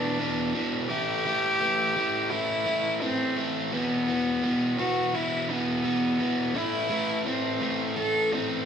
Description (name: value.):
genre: rock.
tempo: 85 BPM.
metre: 4/4.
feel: straight.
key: unclear.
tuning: A4 = 437 Hz.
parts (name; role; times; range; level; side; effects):
dark cello; melody; 0.0-8.7 s; B3 to A4; -27 LUFS; left 1 dB; none.
biting overdriven guitar; riff; 0.0-8.7 s; E2 to A3; -28 LUFS; right 1 dB; none.
room: wet large studio reverb, RT60 0.9 s.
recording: band playing live in one room.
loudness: -24 LUFS.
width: side -7 dB against mid.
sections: 0.0-8.7 A section.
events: none.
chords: 0.0 E5; 0.9 A5; 3.7 E5; 6.6 Am.